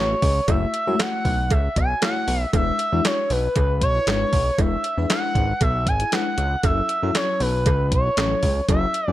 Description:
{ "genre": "early-eighties boogie funk", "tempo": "117 BPM", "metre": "4/4", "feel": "straight", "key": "F# minor", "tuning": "A4 = 442 Hz", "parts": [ { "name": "expressive portamento lead", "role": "melody", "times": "0.0-9.1 s", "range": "B4 to G#5", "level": "-23 LUFS", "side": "right 1 dB", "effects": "chorus" }, { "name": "FM electric piano with soft pad layer", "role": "accompaniment", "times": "0.0-9.1 s", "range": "F#3 to C#5", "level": "-28 LUFS", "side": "left 6 dB", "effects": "chorus" }, { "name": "fat analog bass", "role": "bass", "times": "0.0-9.1 s", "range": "E1 to F#2", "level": "-23 LUFS", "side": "equal", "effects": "none" }, { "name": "clean 12-bit digital drum machine", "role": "drums", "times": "0.2-9.1 s", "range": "handclaps, hi-hat, kick drum, snare drum", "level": "-23 LUFS", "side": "equal", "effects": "none" }, { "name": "cowbell", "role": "percussion", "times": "0.5-8.8 s", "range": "none", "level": "-30 LUFS", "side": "right 7 dB", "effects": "none" } ], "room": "digital ambience", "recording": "none", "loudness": "-19 LUFS", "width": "side -14 dB against mid", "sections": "0.0-9.1 A section", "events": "none", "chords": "0.0 F#m7; 2.5 E7; 6.6 F#m7" }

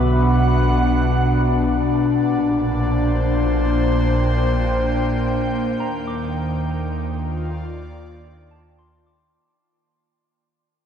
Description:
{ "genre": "ambient", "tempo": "67 BPM", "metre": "4/4", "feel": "straight", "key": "unclear", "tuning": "A4 = 440 Hz", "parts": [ { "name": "airy breathy pad", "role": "sustained chords", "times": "0.0-9.4 s", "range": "Bb2 to G5", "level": "-19 LUFS", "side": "left 1 dB", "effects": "chorus" }, { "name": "soft synth bell", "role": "arpeggios", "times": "0.0-10.3 s", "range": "A5 to D6", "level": "-32 LUFS", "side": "left 2 dB", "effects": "chorus, phaser, ping-pong delay, shimmer reverb" }, { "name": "warm sub bass", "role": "bass", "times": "0.0-9.4 s", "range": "Bb1 to Eb2", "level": "-24 LUFS", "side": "equal", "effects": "none" } ], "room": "wet huge ambient reverb, RT60 8.7 s", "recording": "dark, warm production, nothing above 10.5 kHz", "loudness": "-17 LUFS", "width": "side -8 dB against mid", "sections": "0.0-9.4 A section", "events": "fade-out 4.6-9.4", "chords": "0.0 Bm; 2.2 Bb6; 5.8 Ebmaj7" }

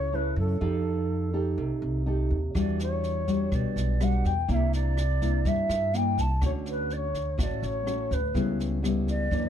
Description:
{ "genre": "bossa nova", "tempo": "124 BPM", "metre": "4/4", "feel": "straight", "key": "D major", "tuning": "A4 = 440 Hz", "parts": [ { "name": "mellow hollow shakuhachi", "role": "melody", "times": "0.0-9.5 s", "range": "A4 to A5", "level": "-31 LUFS", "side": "equal", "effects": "none" }, { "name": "nylon-string guitar", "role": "accompaniment", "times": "0.0-9.5 s", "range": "F#2 to A4", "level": "-30 LUFS", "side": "left 1 dB", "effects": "none" }, { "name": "upright bass", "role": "bass", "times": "0.0-9.4 s", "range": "A1 to G2", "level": "-28 LUFS", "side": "equal", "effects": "none" }, { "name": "jazz brush drum kit", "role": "drums", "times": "2.5-9.4 s", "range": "kick drum, rim click, snare drum", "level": "-33 LUFS", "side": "equal", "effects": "none" } ], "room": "little or no reverb", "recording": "dark, warm production", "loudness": "-25 LUFS", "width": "side -9 dB against mid", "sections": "0.0-9.5 A section", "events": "none", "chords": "0.0 F#m7; 0.6 F9; 2.5 Em9; 4.5 C9; 6.4 Dmaj7; 8.3 C#m7b5" }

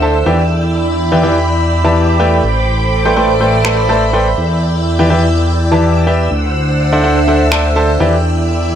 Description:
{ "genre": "piano house", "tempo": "124 BPM", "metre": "4/4", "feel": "swing 54% on 16ths", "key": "E minor", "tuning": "A4 = 442 Hz", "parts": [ { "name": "string machine, violins", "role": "sustained chords", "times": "0.0-8.8 s", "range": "C5 to E6", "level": "-19 LUFS", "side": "equal", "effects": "ensemble chorus" }, { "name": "clear grand piano", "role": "riff", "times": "0.0-8.1 s", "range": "E3 to A5", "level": "-15 LUFS", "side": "equal", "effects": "tape echo" }, { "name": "fat analog bass", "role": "bass", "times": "0.0-8.8 s", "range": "A1 to E2", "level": "-15 LUFS", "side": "equal", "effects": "none" }, { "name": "airy breathy pad", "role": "texture", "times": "0.0-8.8 s", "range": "D4 to B5", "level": "-18 LUFS", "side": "right 1 dB", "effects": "chorus" }, { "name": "electronic finger snaps", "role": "drums", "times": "3.6-3.8, 7.5-7.6 s", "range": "none", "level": "-20 LUFS", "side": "equal", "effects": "none" } ], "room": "light reverb", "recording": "none", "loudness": "-10 LUFS", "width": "side -9 dB against mid", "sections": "0.0-8.8 A section", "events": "none", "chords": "0.3 Em7; 2.4 Am11; 4.4 Em7; 6.3 D9; 8.0 Em7" }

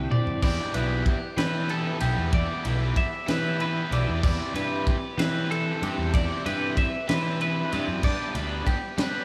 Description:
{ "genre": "math rock and midwest emo", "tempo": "63 BPM (dotted quarters)", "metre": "6/8", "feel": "straight", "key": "unclear", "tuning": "A4 = 439 Hz", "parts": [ { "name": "twelve-string electric guitar", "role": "accompaniment", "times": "0.0-2.3 s", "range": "D3 to G4", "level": "-39 LUFS", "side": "equal", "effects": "none" }, { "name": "twelve-string electric guitar", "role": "arpeggios", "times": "0.0-9.2 s", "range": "G4 to E5", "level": "-32 LUFS", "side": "equal", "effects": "subtle chorus" }, { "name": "fuzz picked electric bass", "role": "bass", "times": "0.0-9.2 s", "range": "B1 to G3", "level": "-30 LUFS", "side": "equal", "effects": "overdrive" }, { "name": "crisp fusion drum kit", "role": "drums", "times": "0.1-9.1 s", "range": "crash cymbal, kick drum, ride cymbal, snare drum, toms", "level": "-31 LUFS", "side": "equal", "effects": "none" }, { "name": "cranked stack guitar", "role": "riff", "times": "0.4-9.2 s", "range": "E3 to G4", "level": "-34 LUFS", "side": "equal", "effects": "overdrive" } ], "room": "moderate huge ambient reverb, RT60 4.4 s", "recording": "dreamy mix soaked in reverb, small room ambience", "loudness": "-26 LUFS", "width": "mono", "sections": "0.4-9.2 A section", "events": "drum fill 0.0-0.4", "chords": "0.4 Em7; 4.2 Cmaj9/E; 8.0 G" }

